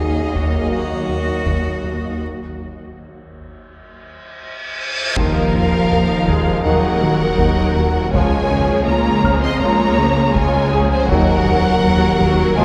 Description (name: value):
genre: cinematic, hybrid orchestral and electronic film score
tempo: 81 BPM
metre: 4/4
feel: straight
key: Eb minor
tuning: A4 = 441 Hz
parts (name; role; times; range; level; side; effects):
- bright cello; melody; 0.0-2.2 s; Gb4 to Ab4; -31 LUFS; equal; none
- warm symphonic violin section; melody; 0.0-12.6 s; F5 to C6; -25 LUFS; equal; none
- warm symphonic violin section; second line; 0.0-12.6 s; Bb4 to Eb5; -25 LUFS; equal; none
- warm symphonic viola section; accompaniment; 0.0-12.6 s; F3 to Ab4; -27 LUFS; equal; none
- bright trombone section; sustained chords; 0.0-12.6 s; Eb3 to Gb3; -30 LUFS; equal; none
- mellow French horn section; sustained chords; 0.0-12.6 s; Ab3 to Gb4; -33 LUFS; equal; none
- round analog bass; riff; 0.0-12.6 s; Db2 to Eb3; -26 LUFS; equal; none
- rich studio double bass section; bass; 0.0-12.6 s; Db2 to Eb2; -28 LUFS; equal; none
- warm symphonic cello section; bass; 0.0-12.6 s; Eb2 to C4; -24 LUFS; equal; none
- bright grand piano; texture; 0.0-12.6 s; Ab3 to F6; -34 LUFS; equal; none
- tight sequenced synth; arpeggios; 0.4-12.6 s; Db3 to Eb4; -31 LUFS; equal; none
- taiko ensemble; drums; 0.4-12.6 s; none; -29 LUFS; equal; none
- reverse cymbal and sub drop; sound effects; 4.2-8.1 s; none; -29 LUFS; equal; none
- mellow tuba; bass; 5.2-12.6 s; Db2 to Eb2; -27 LUFS; equal; none
- phased detuned saw bass; bass; 5.2-12.6 s; Eb1 to Db2; -29 LUFS; equal; none
room: wet cathedral reverb, RT60 4.9 s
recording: recorded in a church or concert hall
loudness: -16 LUFS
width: mono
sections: 0.0-5.2 A section; 5.2-12.6 B section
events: break 2.2-5.2; reverse cymbal 4.2-5.2; impact 5.2-8.1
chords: 0.0 Ebmadd9; 2.2 N.C.; 5.2 Ebmadd9; 8.1 Db; 11.1 Ebmadd9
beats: 0.72 1.47 | 2.21 2.95 3.69 4.43 | 5.17 5.91 6.65 7.39 | 8.13 8.87 9.61 10.36 | 11.10 11.84 12.58